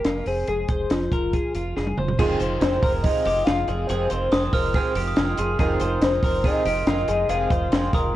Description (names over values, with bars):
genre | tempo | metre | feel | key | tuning
jangly indie pop | 141 BPM | 4/4 | straight | F minor | A4 = 440 Hz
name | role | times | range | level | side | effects
soft octave-layered synth lead | melody | 0.0-8.1 s | F4 to F5 | -25 LUFS | left 2 dB | chorus, phaser, tape echo, plate reverb
twelve-string electric guitar | arpeggios | 0.0-8.1 s | F4 to C5 | -29 LUFS | left 2 dB | spring reverb, plate reverb
deep dub fingered electric bass | bass | 0.0-8.2 s | F1 | -28 LUFS | equal | none
compact cocktail drum kit | drums | 0.0-8.0 s | crash cymbal, hi-hat, kick drum, snare drum, toms | -23 LUFS | equal | none
fingerpicked twelve-string acoustic guitar | accompaniment | 2.2-8.1 s | F2 to F4 | -30 LUFS | right 6 dB | plate reverb
warm upright piano | accompaniment | 2.2-8.2 s | Eb4 to Bb4 | -33 LUFS | right 4 dB | none
glockenspiel with soft plastic mallets | second line | 4.3-8.1 s | C6 to F6 | -30 LUFS | right 2 dB | tape echo
room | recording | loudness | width
moderate studio reverb, RT60 0.6 s | worn, warbling old tape, cassette tape, warbly pitch drift | -20 LUFS | side -14 dB against mid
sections
0.0-2.2 A section; 2.2-8.2 B section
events
drum fill 1.8-2.2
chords
0.0 Fm; 2.2 Fm7